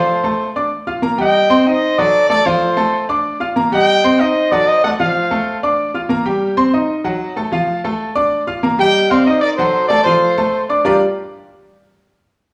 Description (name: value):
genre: latin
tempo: 189 BPM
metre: 4/4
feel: straight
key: G minor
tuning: A4 = 440 Hz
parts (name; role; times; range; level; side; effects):
- warm trumpet section; melody; 0.0-5.6, 8.8-10.7 s; A4 to G5; -17 LUFS; equal; none
- clear grand piano; accompaniment; 0.0-11.0 s; E#3 to F6; -18 LUFS; equal; none
room: wet large studio reverb, RT60 1.2 s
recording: small room ambience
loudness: -15 LUFS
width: mono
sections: 0.7-10.8 A section; 10.8-12.1 B section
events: none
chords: 0.1 F; 0.7 Gm7; 1.3 Cm/G; 2.0 D; 2.6 F; 3.2 Gm7; 3.9 Cm/G; 4.5 D7; 5.1 F; 5.8 Gm7; 6.4 Cm/G; 7.1 F#mmaj7; 7.7 F; 8.3 Gm7; 9.0 Ebmaj13/G; 9.6 D7#9; 10.2 F; 10.8 Gm7